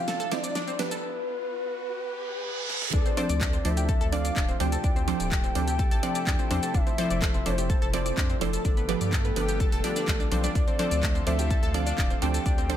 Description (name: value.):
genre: progressive house.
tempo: 126 BPM.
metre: 4/4.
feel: straight.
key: D dorian.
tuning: A4 = 440 Hz.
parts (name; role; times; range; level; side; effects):
soft octave-layered synth lead; melody; 0.0-12.8 s; A4 to G5; -32 LUFS; left 2 dB; chorus, sidechain pumping, digital delay.
lush unison pad; sustained chords; 0.0-12.8 s; C3 to A4; -37 LUFS; equal; chorus, sidechain pumping.
riser and reverse cymbal; sound effects; 0.0-2.9 s; none; -35 LUFS; right 3 dB; none.
analog pluck; arpeggios; 0.1-12.7 s; A3 to D6; -35 LUFS; equal; chorus, sidechain pumping, dub echo.
pop drum kit; drums; 0.1-12.8 s; handclaps, hi-hat, shaker, snare drum; -34 LUFS; equal; small room reverb.
wide unison pluck; stabs; 0.3-12.8 s; F3 to D5; -32 LUFS; moving between left 2 dB and right 11 dB; auto-pan, sidechain pumping.
round analog bass; bass; 2.9-12.8 s; D1 to G2; -29 LUFS; equal; sidechain pumping.
electronic kick drum; drums; 2.9-12.6 s; none; -26 LUFS; equal; small room reverb.
room: light reverb.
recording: high-pass filter.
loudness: -24 LUFS.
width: side -10 dB against mid.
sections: 0.0-2.9 A section; 2.9-12.8 B section.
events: build-up 0.0-2.9; drum fill 0.0-1.0, 2.7; filter sweep on soft synth lead 0.0-2.9; filter sweep 0.0-2.9; riser 0.0-2.9; break 1.0-2.9; reverse cymbal 2.0-2.9; drop 2.9-12.8.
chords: 0.0 Fmaj7; 1.0 N.C.; 2.9 Dm7; 6.7 Fmaj7; 8.6 G7; 10.6 Dm7.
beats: 0.08 0.55 | 1.03 1.51 1.98 2.46 | 2.93 3.41 3.89 4.36 | 4.84 5.32 5.79 6.27 | 6.74 7.22 7.70 8.17 | 8.65 9.12 9.60 10.08 | 10.55 11.03 11.51 11.98 | 12.46.